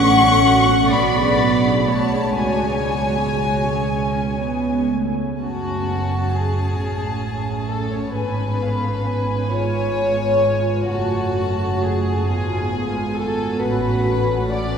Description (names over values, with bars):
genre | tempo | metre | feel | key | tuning
classical, slow romantic movement for string orchestra | 39-46 BPM (dotted quarters) | 6/8 | rubato | F# minor | A4 = 441 Hz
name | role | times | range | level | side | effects
warm chamber violin section | melody | 0.0-14.8 s | E#5 to C#6 | -25 LUFS | left 3 dB | none
warm symphonic violin section | second line | 0.0-14.8 s | F#4 to F#5 | -22 LUFS | left 2 dB | none
dark symphonic viola section | accompaniment | 0.0-14.8 s | G#3 to A4 | -25 LUFS | right 1 dB | none
dark symphonic double bass section | bass | 0.0-14.8 s | F#1 to C#2 | -24 LUFS | right 2 dB | none
warm symphonic cello section | bass | 0.0-14.8 s | F#2 to C#4 | -25 LUFS | right 3 dB | none
room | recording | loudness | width
wet cathedral reverb, RT60 5.8 s | recorded in a church or concert hall | -17 LUFS | side -7 dB against mid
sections
0.0-5.4 A section; 5.4-14.8 B section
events
none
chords
0.0 F#m/A; 0.9 G#m7b5/B; 2.4 C#sus4; 3.9 C#5; 5.4 F#m; 6.8 A; 8.1 C#7/G#; 10.9 F#m; 12.3 G#m6; 13.6 F#m/A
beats
0.91 | 2.39 3.90 | 5.41 6.79 | 8.14 9.53 | 10.90 12.28 | 13.60